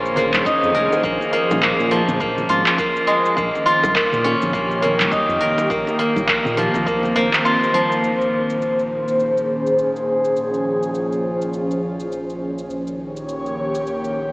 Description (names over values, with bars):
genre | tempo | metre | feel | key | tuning
organic downtempo | 103 BPM | 4/4 | swing 59% on 16ths | Bb dorian | A4 = 439 Hz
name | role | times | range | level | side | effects
airy breathy pad | sustained chords | 0.0-14.3 s | Eb3 to Db5 | -21 LUFS | equal | chorus, sidechain pumping
steel-string zither | arpeggios | 0.0-10.4 s | F3 to Bb4 | -19 LUFS | equal | analog delay
smooth synth bass | bass | 0.0-14.3 s | F1 to Bb2 | -30 LUFS | equal | sidechain pumping
deep house drum kit | drums | 0.1-14.1 s | handclaps, hi-hat, shaker | -24 LUFS | equal | none
congas and bongos | percussion | 0.2-7.9 s | none | -30 LUFS | equal | none
electronic kick drum | drums | 0.5-7.0 s | none | -32 LUFS | equal | none
room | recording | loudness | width
wet cathedral reverb, RT60 6.5 s | dreamy mix soaked in reverb, AM radio sound | -16 LUFS | side -26 dB against mid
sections
0.0-8.0 A section; 8.0-14.3 B section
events
filter sweep on analog synth pad 8.0-14.3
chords
0.0 Bbm11; 1.0 Dbmaj7/Bb; 3.4 Eb7/Bb; 5.7 Cm7/Bb; 8.0 Bbm11; 10.4 Dbmaj7/Bb; 12.7 Eb7/Bb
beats
0.46 | 1.04 1.62 2.21 2.79 | 3.37 3.95 4.54 5.12 | 5.70 6.28 6.87 7.45 | 8.03 8.61 9.20 9.78 | 10.36 10.94 11.53 12.11 | 12.69 13.27 13.86